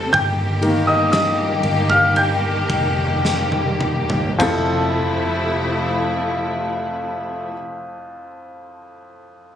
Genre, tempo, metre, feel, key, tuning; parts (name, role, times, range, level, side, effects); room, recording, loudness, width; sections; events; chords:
pop ballad; 50-62 BPM; 4/4; straight; F major; A4 = 442 Hz
clear baby grand piano; accompaniment; 0.0-9.6 s; F2 to G6; -20 LUFS; left 1 dB
warm studio string section; sustained chords; 0.0-7.5 s; C3 to A4; -22 LUFS; left 1 dB
vintage muted fingered electric bass; bass; 0.0-7.5 s; E1 to G1; -25 LUFS; equal
huge arena drum kit; drums; 0.1-4.7 s; crash cymbal, kick drum, ride cymbal, snare drum, toms; -26 LUFS; equal
tambourine; percussion; 1.1-5.0 s; -34 LUFS; right 2 dB
light reverb, small room ambience; recorded on a phone in the room, club reverb, compression; -17 LUFS; side -9 dB against mid
0.0-4.4 A section; 4.4-9.2 B section
slowing down 0.0-4.4; grand piano solo 0.0-4.4; drum fill 3.2-4.4
0.1 Eb/G; 4.4 Fmaj7